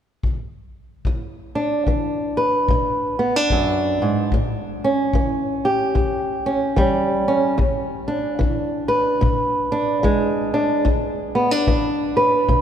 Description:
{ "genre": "acoustic country blues, solo or duo", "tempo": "73 BPM", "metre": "4/4", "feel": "swing 60% on 8ths", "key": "unclear", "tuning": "A4 = 440 Hz", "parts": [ { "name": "kick drum", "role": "drums", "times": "0.2-12.6 s", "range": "none", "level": "-23 LUFS", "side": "left 2 dB", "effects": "none" }, { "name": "fingerpicked old ladder-braced acoustic guitar", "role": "melody", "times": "1.1-12.6 s", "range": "E2 to B4", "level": "-18 LUFS", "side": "right 1 dB", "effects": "none" } ], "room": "wet church reverb, RT60 4.0 s", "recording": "recorded in a church or concert hall", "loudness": "-18 LUFS", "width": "side -9 dB against mid", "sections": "0.0-1.0 A section; 1.0-12.6 B section", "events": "none", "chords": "0.0 N.C.; 1.0 E7(no3); 4.3 A7; 7.6 E7", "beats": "0.23 | 1.05 1.86 2.68 3.50 | 4.31 5.13 5.95 6.77 | 7.58 8.40 9.22 10.04 | 10.85 11.67 12.48" }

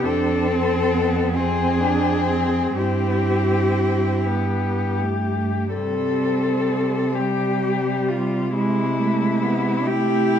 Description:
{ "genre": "classical, lyrical piece for cello ensemble", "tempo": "40-46 BPM (dotted quarters)", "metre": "6/8", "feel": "rubato", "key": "C major", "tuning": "A4 = 440 Hz", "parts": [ { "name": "rich cello", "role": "melody", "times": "0.0-10.4 s", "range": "E4 to A4", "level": "-23 LUFS", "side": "left 6 dB", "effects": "none" }, { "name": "clear cello", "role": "second line", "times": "0.0-10.4 s", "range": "G3 to E4", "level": "-25 LUFS", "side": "right 5 dB", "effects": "none" }, { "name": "rich cello", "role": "accompaniment", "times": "0.0-10.4 s", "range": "G3 to C4", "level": "-26 LUFS", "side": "left 1 dB", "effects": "none" }, { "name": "rich cello", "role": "bass", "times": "0.0-10.4 s", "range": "F2 to C3", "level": "-24 LUFS", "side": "right 2 dB", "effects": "none" } ], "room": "moderate scoring stage reverb, RT60 1.6 s", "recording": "none", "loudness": "-19 LUFS", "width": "side -8 dB against mid", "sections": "0.0-10.4 A section", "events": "none", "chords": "0.0 F; 2.8 C/G; 4.3 G; 5.7 C5; 8.6 E/C; 9.9 Am/C", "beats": "| 0.05 1.36 | 2.78 4.26 | 5.74 7.17 | 8.55 9.87" }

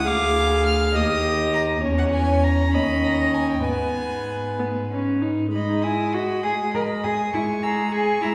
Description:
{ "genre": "quick classical-period movement for string quartet", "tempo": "66 BPM (dotted quarters)", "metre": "6/8", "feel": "rubato", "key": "G# minor", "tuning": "A4 = 441 Hz", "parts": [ { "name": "rich violin", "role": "melody", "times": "0.0-8.3 s", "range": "F#5 to F6", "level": "-31 LUFS", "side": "equal", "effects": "none" }, { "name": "dark violin", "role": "second line", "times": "0.0-8.3 s", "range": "B4 to A#5", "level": "-28 LUFS", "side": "equal", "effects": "none" }, { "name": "warm viola", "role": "accompaniment", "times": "0.0-8.3 s", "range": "G#3 to Ab4", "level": "-27 LUFS", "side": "equal", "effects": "none" }, { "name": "dark cello", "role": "bass", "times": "0.0-8.3 s", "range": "D2 to A#4", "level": "-27 LUFS", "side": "equal", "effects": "none" } ], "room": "wet recital hall reverb, RT60 1.6 s", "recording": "recorded in a church or concert hall", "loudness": "-22 LUFS", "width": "mono", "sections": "0.0-5.5 A section; 5.5-8.3 A section", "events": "none", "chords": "0.1 Ddim; 0.9 D#; 1.8 C#m/E; 2.7 D#7(no3); 3.7 G#m; 7.3 A#m7b5/G#", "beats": "| 0.07 0.95 | 1.83 2.74 | 3.66 4.60 | 5.54 6.45 | 7.34 8.22" }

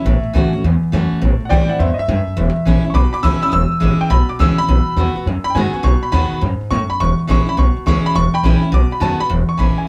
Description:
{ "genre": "rockabilly", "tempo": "208 BPM", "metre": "4/4", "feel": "swing 64% on 8ths", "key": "E major", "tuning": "A4 = 441 Hz", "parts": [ { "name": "warm upright piano", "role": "melody", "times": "0.0-9.9 s", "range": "C5 to E6", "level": "-23 LUFS", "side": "equal", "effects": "none" }, { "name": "picked steel-string acoustic guitar", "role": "accompaniment", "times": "0.0-9.9 s", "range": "E2 to F#4", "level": "-21 LUFS", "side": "equal", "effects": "none" }, { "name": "upright bass", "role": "bass", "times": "0.0-9.8 s", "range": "E1 to A2", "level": "-19 LUFS", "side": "equal", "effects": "none" } ], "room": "moderate small room reverb, RT60 0.5 s", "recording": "band playing live in one room", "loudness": "-16 LUFS", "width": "mono", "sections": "0.0-9.3 A section", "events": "upright piano solo 0.0-9.3", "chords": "0.1 A6; 1.2 Am7; 2.4 E6; 4.7 B6; 7.0 E6; 8.7 B6; 9.3 E6", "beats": "| 0.06 0.34 0.64 0.92 | 1.21 1.50 1.79 2.08 | 2.37 2.66 2.95 3.24 | 3.53 3.82 4.11 4.40 | 4.69 4.97 5.26 5.55 | 5.84 6.13 6.42 6.71 | 7.00 7.28 7.57 7.86 | 8.15 8.44 8.72 9.01 | 9.30 9.59 9.88" }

